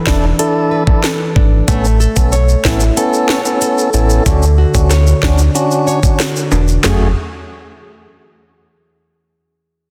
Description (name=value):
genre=dancehall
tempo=93 BPM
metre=4/4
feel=straight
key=F# minor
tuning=A4 = 439 Hz
part: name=nylon-string guitar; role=arpeggios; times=0.0-7.6 s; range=D3 to C#5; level=-20 LUFS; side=equal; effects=none
part: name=downlifter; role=sound effects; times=0.0-1.7 s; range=none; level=barely audible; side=none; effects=none
part: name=tonewheel organ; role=accompaniment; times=0.1-7.1 s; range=A3 to A4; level=-20 LUFS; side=equal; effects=overdrive, stopped rotary speaker, sidechain pumping
part: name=sub bass with octave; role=bass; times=0.1-7.1 s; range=E1 to D2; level=-14 LUFS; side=equal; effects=none
part: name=island pop drum kit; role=drums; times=0.1-7.0 s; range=handclaps, hi-hat, kick drum, rim click, snare drum, toms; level=-18 LUFS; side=equal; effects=none
part: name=maracas and timbales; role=percussion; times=1.7-7.1 s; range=none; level=-25 LUFS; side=equal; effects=none
room=light reverb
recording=dense, heavily limited modern master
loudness=-13 LUFS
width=mono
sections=0.0-6.8 A section; 6.8-9.4 B section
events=none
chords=0.0 E7sus4; 1.7 Aadd9; 4.3 Dmaj7; 6.8 F#madd9